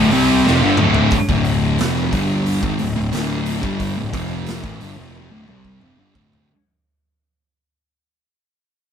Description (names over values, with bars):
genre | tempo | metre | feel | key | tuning
stoner and doom metal | 90 BPM | 4/4 | straight | D minor | A4 = 436 Hz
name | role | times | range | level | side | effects
heavy high-gain guitar | riff | 0.0-1.1 s | D2 to C4 | -19 LUFS | equal | distortion
thick fuzz guitar | riff | 0.0-6.5 s | D2 to C4 | -20 LUFS | left 7 dB | distortion
thick fuzz guitar | riff | 0.0-6.5 s | D2 to C4 | -21 LUFS | right 6 dB | distortion
fuzz picked electric bass | bass | 0.0-6.5 s | D1 to C2 | -26 LUFS | equal | overdrive
raw garage drum kit | drums | 0.1-6.5 s | hi-hat, kick drum, snare drum, toms | -24 LUFS | right 1 dB | none
room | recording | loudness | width
light reverb | band playing live in one room | -15 LUFS | side -8 dB against mid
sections
0.0-1.1 A section; 1.1-6.5 B section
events
drum fill 0.5-1.1, 5.1-6.5; fade-out 1.1-6.5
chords
0.0 Dm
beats
0.46 | 1.12 1.79 2.46 3.13 | 3.80 4.47 5.14 5.81